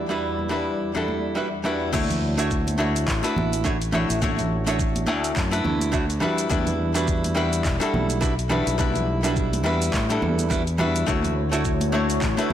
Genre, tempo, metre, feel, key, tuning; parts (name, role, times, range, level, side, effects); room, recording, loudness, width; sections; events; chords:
sunset chillout; 105 BPM; 4/4; swing 58% on 16ths; D major; A4 = 440 Hz
archtop guitar, miked and amplified; accompaniment; 0.0-12.5 s; G3 to C#5; -24 LUFS; equal; auto-pan, digital delay
airy breathy pad; sustained chords; 0.0-1.9, 11.3-12.5 s; E2 to D5; -31 LUFS; left 1 dB; chorus
congas; percussion; 0.4-12.5 s; -31 LUFS; right 3 dB
modern bright fingered electric bass; bass; 1.9-12.5 s; E1 to A2; -26 LUFS; equal
electronic kick drum; drums; 1.9-12.4 s; -27 LUFS; equal
smooth R&B drum kit; drums; 1.9-12.5 s; crash cymbal, handclaps, hi-hat, shaker; -31 LUFS; right 1 dB
light reverb, digital ambience; blown-out, overdriven recording, overdrive; -21 LUFS; side -10 dB against mid
0.0-1.9 A section; 1.9-12.5 B section
filter sweep on analog synth pad 0.0-1.9
0.0 Em7; 1.9 Dmaj7; 6.2 Em7; 11.1 Dmaj7